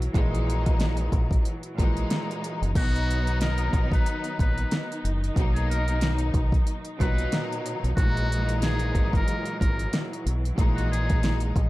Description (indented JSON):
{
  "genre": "hip hop, boom-bap hip-hop",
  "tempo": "92 BPM",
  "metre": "4/4",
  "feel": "swing 57% on 16ths",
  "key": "B major",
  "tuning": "A4 = 440 Hz",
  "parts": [
    { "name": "warm studio string section", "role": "sustained chords", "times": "0.0-11.7 s", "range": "D#3 to D#4", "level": "-37 LUFS", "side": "equal", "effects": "high-pass filter, low-pass filter" },
    { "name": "deep dub fingered electric bass", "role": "bass", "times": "0.0-11.7 s", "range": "F#1 to B1", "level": "-26 LUFS", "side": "equal", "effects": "none" },
    { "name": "deep house drum kit", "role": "drums", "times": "0.0-11.7 s", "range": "crash cymbal, hi-hat, kick drum, snare drum", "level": "-25 LUFS", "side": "equal", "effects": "none" },
    { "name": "bright studio string section", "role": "accompaniment", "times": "0.1-11.7 s", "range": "A#2 to D#4", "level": "-31 LUFS", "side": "equal", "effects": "cassette tape, high-pass filter, low-pass filter" },
    { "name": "trumpet with metal mute", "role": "melody", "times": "2.8-11.4 s", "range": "F#4 to B4", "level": "-34 LUFS", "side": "equal", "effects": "high-pass filter, low-pass filter, digital delay" }
  ],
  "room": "little or no reverb",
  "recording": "dark, warm production",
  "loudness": "-23 LUFS",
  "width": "side -18 dB against mid",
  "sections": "0.0-2.8 A section; 2.8-11.7 A section",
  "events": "none",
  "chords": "0.0 F#13; 2.8 Bmaj7; 8.0 F#13"
}